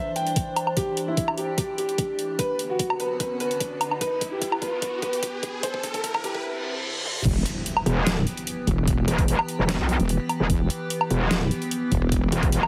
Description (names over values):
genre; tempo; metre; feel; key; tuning
heavy wobble dubstep; 148 BPM; 4/4; half-time; E minor; A4 = 441 Hz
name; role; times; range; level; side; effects
warm concert grand piano; melody; 0.0-6.4 s; E4 to G5; -30 LUFS; equal; dub echo
evolving wavetable pad; sustained chords; 0.0-12.7 s; F#2 to C5; -35 LUFS; equal; chorus, built-in reverb, phaser, sidechain pumping
dubstep drum kit; drums; 0.2-12.7 s; crash cymbal, hi-hat, snare drum, toms, woodblock; -31 LUFS; equal; overdrive, high-pass filter on hats, small room ambience, high-pass filter on perc, high-pass filter on toms, high-pass filter on cymbals, high-pass filter on snare
electronic kick drum; drums; 0.4-12.5 s; none; -29 LUFS; equal; overdrive, small room ambience
riser, reverse cymbal and impact; sound effects; 2.2-8.9 s; none; -36 LUFS; equal; none
wobble bass; bass; 7.3-12.3 s; E1; -25 LUFS; equal; chorus, overdrive
metallic wobble bass; bass; 7.9-12.6 s; E1 to B1; -25 LUFS; equal; distortion, chorus, overdrive
room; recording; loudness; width
moderate lush hall reverb, RT60 2.1 s; heavily compressed radio sound, multiband compression, high-pass filter; -25 LUFS; mono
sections
0.0-7.3 A section; 7.3-12.7 B section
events
build-up 0.0-7.3; filter sweep 0.0-7.3; drum fill 0.8-6.4, 7.1; riser 2.2-6.4; reverse cymbal 6.4-7.3; drop 7.3-12.7; impact 7.3-8.9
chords
0.0 Cadd9; 0.8 Em7; 2.4 Bm/F#; 4.0 G; 5.6 Cadd9; 7.3 Em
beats
0.36 | 0.77 1.17 1.58 1.98 | 2.39 2.79 3.20 3.60 | 4.01 4.42 4.82 5.23 | 5.63 6.04 6.44 6.85 | 7.25 7.66 8.06 8.47 | 8.88 9.28 9.69 10.09 | 10.50 10.90 11.31 11.71 | 12.12 12.52